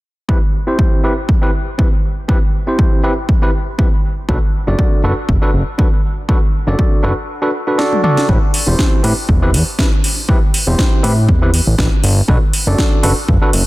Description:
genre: nu-disco, nu disco.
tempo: 120 BPM.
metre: 4/4.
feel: swing 54% on 16ths.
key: A dorian.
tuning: A4 = 438 Hz.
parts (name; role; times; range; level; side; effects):
overdriven tine electric piano; accompaniment; 0.3-13.5 s; C4 to D5; -19 LUFS; equal; low-pass filter, dub echo.
electronic kick drum; drums; 0.3-13.4 s; none; -14 LUFS; equal; overdrive.
fat analog bass; bass; 4.3-13.6 s; E1 to A2; -14 LUFS; equal; none.
house drum kit; drums; 7.8-13.6 s; hi-hat, snare drum, toms; -18 LUFS; left 1 dB; overdrive.
room: digital ambience.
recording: dense, heavily limited modern master.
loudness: -12 LUFS.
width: side -19 dB against mid.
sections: 0.3-8.3 A section; 8.3-13.7 B section.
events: drum fill 7.8-8.3.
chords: 0.3 Cmaj7; 4.3 Bm7; 8.3 Am7; 12.3 Bm7.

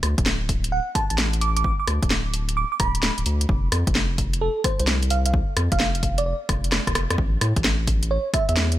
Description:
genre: UK garage, two-step garage.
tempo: 130 BPM.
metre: 4/4.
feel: swing 66% on 16ths.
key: unclear.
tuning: A4 = 436 Hz.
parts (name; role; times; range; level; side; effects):
saturated sub bass; bass; 0.0-8.8 s; D1 to A2; -23 LUFS; equal; none.
garage drum kit; drums; 0.0-8.8 s; hi-hat, rim click, snare drum; -24 LUFS; equal; none.
electronic kick drum; drums; 0.2-8.5 s; none; -25 LUFS; equal; none.
bell-like FM electric piano; melody; 0.7-8.5 s; A4 to D6; -27 LUFS; right 4 dB; chorus, tremolo, tape echo.
room: little or no reverb.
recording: none.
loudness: -20 LUFS.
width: side -14 dB against mid.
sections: 0.0-8.8 A section.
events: drum fill 6.5-7.2.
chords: 0.0 D5; 3.5 F5; 7.2 A5.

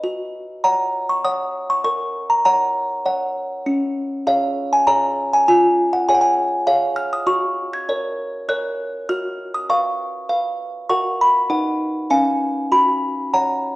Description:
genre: classical, lullaby for music box.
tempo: 99 BPM.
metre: 3/4.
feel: straight.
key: F# major.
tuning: A4 = 440 Hz.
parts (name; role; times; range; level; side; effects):
music box; solo; 0.0-13.8 s; C#4 to G#6; -17 LUFS; equal; none.
room: moderate recital hall reverb, RT60 1.4 s.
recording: worn, warbling old tape, cassette tape, warbly pitch drift.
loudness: -17 LUFS.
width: side -20 dB against mid.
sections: 0.0-13.8 A section.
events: none.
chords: 0.0 F#5; 1.9 F#/A#; 3.7 C#5; 5.5 C#/E#; 7.3 F#; 9.1 C#7/F#; 10.9 F#; 11.5 B/D#; 12.1 C#7; 12.7 F#.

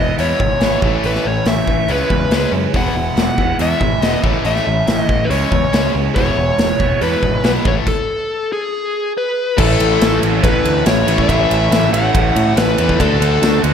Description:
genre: classic rock.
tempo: 140 BPM.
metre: 4/4.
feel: straight.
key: E major.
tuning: A4 = 440 Hz.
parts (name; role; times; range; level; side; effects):
dark smooth lead guitar; melody; 0.0-13.6 s; G#4 to F#5; -18 LUFS; left 2 dB; overdrive, slapback echo.
cranked stack guitar; riff; 0.0-13.7 s; E2 to D4; -21 LUFS; left 8 dB; overdrive, spring reverb.
cranked stack guitar; riff; 0.0-13.7 s; A2 to F#4; -22 LUFS; right 11 dB; overdrive, phaser, slapback echo.
growling picked electric bass; bass; 0.0-13.7 s; E1 to A2; -20 LUFS; right 1 dB; overdrive.
big rock drum kit; drums; 0.2-13.7 s; crash cymbal, hi-hat, kick drum, ride cymbal, snare drum; -18 LUFS; equal; none.
bright tonewheel organ; sustained chords; 9.6-13.7 s; C#4 to F#5; -27 LUFS; right 1 dB; none.
room: moderate lush hall reverb, RT60 1.7 s, studio ambience.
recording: big arena sound.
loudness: -13 LUFS.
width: side -8 dB against mid.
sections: 0.0-9.6 A section; 9.6-13.7 B section.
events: stop 7.9-9.6.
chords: 0.0 E; 0.8 A; 1.9 C#m; 2.7 E; 4.2 A; 5.3 C#m; 6.2 E; 7.7 A5; 8.7 N.C.; 9.6 A; 13.0 D.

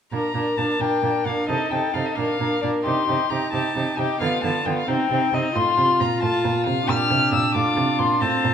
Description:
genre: quick classical-period movement for string quartet.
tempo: 89 BPM (dotted quarters).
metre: 6/8.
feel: rubato.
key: Bb major.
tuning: A4 = 443 Hz.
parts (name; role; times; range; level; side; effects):
dark violin; melody; 0.1-8.5 s; D5 to F6; -23 LUFS; left 5 dB; none.
dark violin; second line; 0.1-8.5 s; Eb4 to Bb4; -27 LUFS; left 2 dB; none.
warm viola; accompaniment; 0.1-8.5 s; B3 to F4; -26 LUFS; right 2 dB; none.
warm cello; bass; 0.1-8.5 s; A2 to D3; -26 LUFS; right 5 dB; none.
room: wet recital hall reverb, RT60 1.5 s.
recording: minimal, uncompressed stereo recording.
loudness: -19 LUFS.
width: side -8 dB against mid.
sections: 0.1-8.5 A section.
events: none.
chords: 0.1 Bb; 1.5 Adim; 2.2 Bb; 2.9 Cm; 4.2 Bdim; 4.9 Cm; 5.6 F/A; 6.9 Bb; 7.5 F/A.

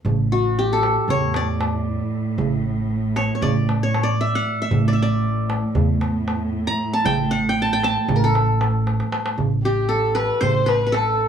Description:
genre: Turkish makam ensemble.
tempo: 232 BPM (eighths).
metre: 9/8.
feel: straight.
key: A makam hicaz.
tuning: A4 = 440 Hz.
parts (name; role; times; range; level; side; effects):
upright bass; bass; 0.0-11.3 s; A1 to E2; -23 LUFS; equal; none.
dark studio cello section; drone; 0.1-9.4 s; A2; -25 LUFS; right 3 dB; none.
darbuka; percussion; 0.1-11.1 s; none; -25 LUFS; right 4 dB; none.
qanun; melody; 0.3-11.3 s; F#4-40c to Bb5; -22 LUFS; left 1 dB; plate reverb.
dark kamancheh; second line; 9.6-11.3 s; G4 to C5; -23 LUFS; left 1 dB; none.
room: moderate studio reverb, RT60 0.5 s.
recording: none.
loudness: -18 LUFS.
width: side -8 dB against mid.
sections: 0.1-9.4 A section; 9.4-11.3 B section.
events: drum fill 8.9-9.4.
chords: none.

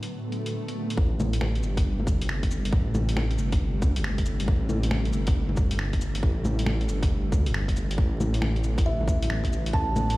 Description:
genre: future garage.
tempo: 137 BPM.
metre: 4/4.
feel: swing 65% on 16ths.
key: A dorian.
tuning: A4 = 440 Hz.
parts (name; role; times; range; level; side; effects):
granular cloud pad; sustained chords; 0.0-10.2 s; A2 to B3; -34 LUFS; equal; built-in reverb, sidechain pumping.
lo-fi sampler-style drum kit; drums; 0.0-10.2 s; bongos, cabasa, finger snaps, hi-hat; -32 LUFS; left 1 dB; small room ambience.
swell; sound effects; 0.2-1.0 s; none; -39 LUFS; left 3 dB; none.
dark detuned saw bass; bass; 1.0-10.2 s; G1 to D2; -26 LUFS; equal; none.
electronic kick drum; drums; 1.0-9.8 s; none; -24 LUFS; equal; small room ambience.
kalimba; melody; 8.9-10.0 s; E5 to A5; -30 LUFS; right 1 dB; tape echo.
room: little or no reverb.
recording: played on a big sound system in a bare room, large studio reverb, vinyl crackle.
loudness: -23 LUFS.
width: side -19 dB against mid.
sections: 1.0-10.2 A section.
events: swell 0.2-1.0.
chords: 0.0 Bm/A; 1.0 Am7; 8.0 Bm/A.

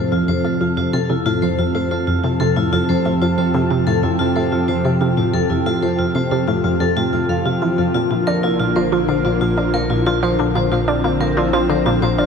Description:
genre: ambient, sequencer-driven space music.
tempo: 92 BPM.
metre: 4/4.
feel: straight.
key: F major.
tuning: A4 = 441 Hz.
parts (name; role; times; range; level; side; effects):
lush unison pad; sustained chords; 0.0-12.3 s; C3 to A4; -20 LUFS; right 1 dB; chorus, shimmer reverb.
vibraphone with hard mallets; arpeggios; 0.0-12.3 s; E4 to F5; -21 LUFS; moving between left 7 dB and equal; auto-pan, tape echo, shimmer reverb.
analog pluck; riff; 0.0-12.3 s; F2 to D4; -20 LUFS; equal; chorus, tape echo, shimmer reverb.
analog drone; bass; 0.0-12.3 s; Bb1 to F2; -27 LUFS; equal; chorus.
room: wet plate reverb, RT60 3.5 s.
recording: echo-heavy mix.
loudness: -15 LUFS.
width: side -6 dB against mid.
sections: 0.0-12.3 A section.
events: none.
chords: 0.0 F; 7.9 Bb.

